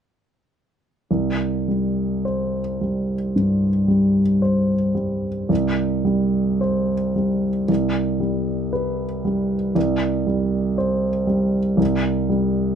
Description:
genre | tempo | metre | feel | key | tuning
classical, romantic nocturne for solo piano | 52-60 BPM | 4/4 | rubato | unclear | A4 = 440 Hz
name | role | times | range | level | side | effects
clear upright piano | solo | 1.1-12.8 s | C2 to C5 | -18 LUFS | equal | none
room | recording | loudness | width
little or no reverb | close, detailed microphones | -19 LUFS | side -8 dB against mid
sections
1.1-12.8 A section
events
none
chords
1.1 C5; 7.7 G/C; 9.8 C5

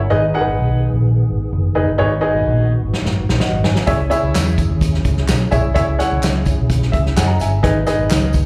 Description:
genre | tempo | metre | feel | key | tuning
uptempo 1960s-style soul | 128 BPM | 4/4 | straight | C# dorian | A4 = 441 Hz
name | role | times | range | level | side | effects
clear baby grand piano | accompaniment | 0.0-8.4 s | D#4 to A#5 | -21 LUFS | equal | slapback echo
percussive tonewheel organ | sustained chords | 0.0-8.5 s | D#3 to G#4 | -29 LUFS | equal | fast rotary speaker, chorus vibrato
vintage muted fingered electric bass | bass | 0.0-8.4 s | F#1 to G#2 | -20 LUFS | equal | none
natural country drum kit | drums | 2.9-8.5 s | hi-hat, kick drum, snare drum | -21 LUFS | equal | none
tambourine and handclaps | percussion | 4.1-8.4 s | none | -33 LUFS | equal | none
room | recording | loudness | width
studio reverb | live gig heard through the venue's PA, club reverb | -17 LUFS | mono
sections
0.0-8.5 A section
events
drum fill 2.9-3.9; grand piano fill 6.7-7.6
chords
0.1 G#m; 3.9 C#m; 7.6 G#m

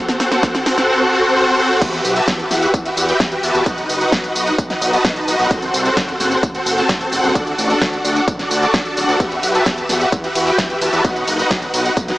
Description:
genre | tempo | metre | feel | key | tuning
EDM, festival progressive house | 130 BPM | 4/4 | straight | E minor | A4 = 440 Hz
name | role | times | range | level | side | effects
supersaw chords | riff | 0.0-12.2 s | C4 to A5 | -16 LUFS | equal | ensemble chorus, sidechain pumping, digital delay
pop drum kit | drums | 0.1-12.2 s | crash cymbal, hi-hat, ride cymbal, snare drum, tambourine | -22 LUFS | equal | none
electronic kick drum | drums | 0.4-12.1 s | none | -21 LUFS | equal | overdrive
fat analog bass | bass | 1.8-12.1 s | D1 to E2 | -24 LUFS | equal | sidechain pumping
room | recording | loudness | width
moderate lush hall reverb, RT60 2.1 s | small speaker sound | -14 LUFS | side -17 dB against mid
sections
0.0-1.8 A section; 1.8-12.2 B section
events
build-up 0.0-1.8; drum fill 0.0-0.9; drop 1.8-12.2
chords
0.0 F#dim/C; 1.8 Emadd9; 3.7 B; 5.5 F#dim; 7.4 D; 9.2 Emadd9; 11.0 B

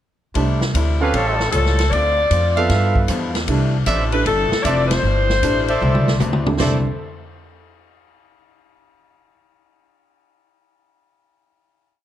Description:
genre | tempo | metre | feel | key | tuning
jazz, big band swing | 154 BPM | 4/4 | swing 66% on 8ths | C major | A4 = 440 Hz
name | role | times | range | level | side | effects
picked swing-style acoustic guitar | accompaniment | 0.3-6.8 s | G2 to E#4 | -28 LUFS | left 4 dB | none
warm concert grand piano | accompaniment | 0.4-6.8 s | C3 to E5 | -25 LUFS | right 6 dB | none
upright bass | bass | 0.4-6.8 s | F1 to G2 | -19 LUFS | equal | none
swinging big-band drum kit | drums | 0.4-6.7 s | hi-hat, kick drum, ride cymbal, snare drum, splash cymbal, toms | -23 LUFS | equal | none
clear saxophone section | melody | 1.0-6.1 s | A4 to D5 | -20 LUFS | left 3 dB | analog delay
warm trumpet section | stabs | 1.0-6.8 s | G4 to F5 | -24 LUFS | right 3 dB | none
room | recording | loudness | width
light reverb, small room ambience | cassette tape | -15 LUFS | side -11 dB against mid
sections
0.3-6.6 A section; 6.6-8.2 final chord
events
band accent 4.8; drum fill 5.8-6.6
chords
0.3 C69; 1.1 Aaug7; 1.9 Dm7; 2.7 G13; 3.5 C69

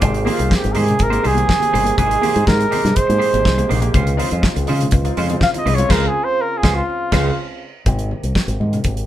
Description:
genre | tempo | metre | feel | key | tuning
disco | 123 BPM | 4/4 | straight | Ab major | A4 = 440 Hz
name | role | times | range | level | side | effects
semi-hollow electric guitar | accompaniment | 0.0-7.3 s | Ab3 to C5 | -26 LUFS | right 4 dB | spring reverb
warm concert grand piano | accompaniment | 0.0-7.3 s | Ab2 to G4 | -24 LUFS | equal | none
mellow French horn section | sustained chords | 0.0-9.1 s | C3 to Ab4 | -26 LUFS | right 4 dB | none
fingered electric bass with an envelope filter | bass | 0.0-9.0 s | G1 to Db3 | -19 LUFS | equal | none
damped 70s drum kit | drums | 0.0-9.1 s | crash cymbal, hi-hat, kick drum, snare drum | -20 LUFS | equal | none
congas | percussion | 0.0-9.0 s | none | -28 LUFS | left 3 dB | none
warm flugelhorn | melody | 0.3-7.5 s | F4 to F5 | -18 LUFS | right 1 dB | none
room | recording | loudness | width
moderate small room reverb, RT60 0.5 s | band playing live in one room | -14 LUFS | side -12 dB against mid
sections
0.0-7.9 A section; 7.9-9.1 B section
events
flugelhorn solo 0.0-7.9; band accent 5.9-7.9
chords
0.0 Abmaj9; 3.9 Dbmaj7; 7.9 Abmaj9

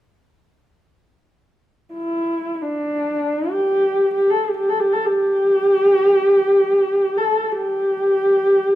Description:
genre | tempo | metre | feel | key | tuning
mongolian traditional | free time | none | none | unclear | A4 = 440 Hz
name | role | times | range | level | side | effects
dark horsehead fiddle | melody | 1.9-8.8 s | D4 to A4 | -16 LUFS | equal | none
room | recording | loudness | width
moderate recital hall reverb, RT60 1.7 s | none | -16 LUFS | side -14 dB against mid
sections
1.4-8.8 A section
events
none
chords
none

